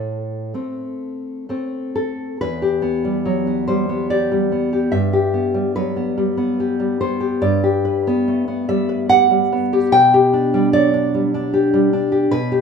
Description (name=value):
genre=romantic piece for solo classical guitar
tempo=73 BPM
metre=3/4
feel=uneven beats, rubato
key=E minor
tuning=A4 = 440 Hz
part: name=nylon-string guitar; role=solo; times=0.0-12.6 s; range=E2 to G5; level=-16 LUFS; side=equal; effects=none
room=moderate recital hall reverb, RT60 1.6 s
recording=minimal, uncompressed stereo recording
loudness=-16 LUFS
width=side -6 dB against mid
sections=0.0-2.4 A section; 2.4-12.6 B section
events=none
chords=0.0 Am; 2.4 Em; 4.9 Em/G; 7.4 G; 9.9 G/B